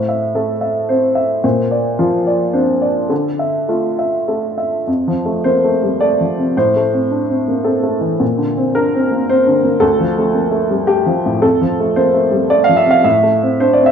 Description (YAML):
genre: neoclassical minimalist piano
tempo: 100-115 BPM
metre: 3/4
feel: rubato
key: F major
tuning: A4 = 440 Hz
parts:
  - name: warm upright piano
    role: solo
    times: 0.0-13.9 s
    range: D2 to F5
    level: -13 LUFS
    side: equal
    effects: none
room: wet recital hall reverb, RT60 1.5 s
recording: recorded in a church or concert hall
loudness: -13 LUFS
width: side -7 dB against mid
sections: 0.0-4.9 A section; 4.9-13.9 B section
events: none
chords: 0.0 Am; 1.4 Bbadd9; 3.1 Dmadd9; 4.9 F; 6.5 Am; 8.2 Bbadd9; 9.8 Dm; 11.4 F; 13.0 Am